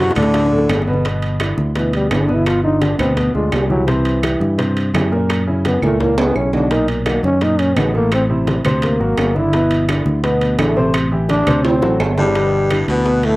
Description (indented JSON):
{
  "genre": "Afro-Cuban jazz",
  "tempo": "170 BPM",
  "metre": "4/4",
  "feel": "straight",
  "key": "G major",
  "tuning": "A4 = 440 Hz",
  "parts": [
    { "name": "growling trombone", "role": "melody", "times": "0.0-13.4 s", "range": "E3 to F#4", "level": "-18 LUFS", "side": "equal", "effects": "cassette tape" },
    { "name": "edgy baritone saxophone", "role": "second line", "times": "0.0-0.8, 12.2-13.4 s", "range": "G2 to F#3", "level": "-24 LUFS", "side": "left 2 dB", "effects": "cassette tape, tape echo" },
    { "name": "warm upright piano", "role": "accompaniment", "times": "0.0-13.4 s", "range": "A2 to C5", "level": "-20 LUFS", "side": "equal", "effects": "cassette tape" },
    { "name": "fingered electric bass", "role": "bass", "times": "0.0-13.4 s", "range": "G1 to G2", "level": "-19 LUFS", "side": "equal", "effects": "none" },
    { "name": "bongos", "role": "percussion", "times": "0.1-13.4 s", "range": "none", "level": "-28 LUFS", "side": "left 4 dB", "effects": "none" },
    { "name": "claves", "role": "percussion", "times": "0.2-12.9 s", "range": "none", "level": "-31 LUFS", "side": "equal", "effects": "none" },
    { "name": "congas", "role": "percussion", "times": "0.2-13.4 s", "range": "none", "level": "-26 LUFS", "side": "equal", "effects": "none" },
    { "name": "timbales", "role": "percussion", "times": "0.2-13.4 s", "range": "none", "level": "-23 LUFS", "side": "right 3 dB", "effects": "none" }
  ],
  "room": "light reverb",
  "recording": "home recording on cassette",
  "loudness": "-14 LUFS",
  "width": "side -19 dB against mid",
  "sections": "0.0-1.0 A section; 1.0-12.4 B section; 12.4-13.4 C section",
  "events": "drum fill 0.0-1.0, 5.8-6.7, 11.7-12.4; trombone solo 1.0-12.4",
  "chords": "0.3 D5; 1.0 G6; 2.5 G7; 3.9 C; 5.3 F#7; 6.7 Bmaj7; 8.1 Amadd11; 8.8 Daug7; 9.5 G69; 10.9 Am7; 11.7 D7; 12.4 G6"
}